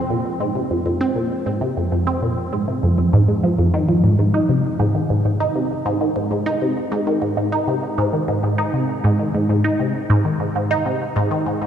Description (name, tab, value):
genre	ambient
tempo	99 BPM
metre	4/4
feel	straight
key	unclear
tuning	A4 = 443 Hz
part	resonant blip pluck	solo	0.0-11.7 s	F2 to Eb4	-17 LUFS	equal	phaser, tape echo
room	wet cathedral reverb, RT60 4.8 s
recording	in a vast, echoing space, cassette tape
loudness	-17 LUFS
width	side -9 dB against mid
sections	0.0-11.7 A section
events	none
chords	none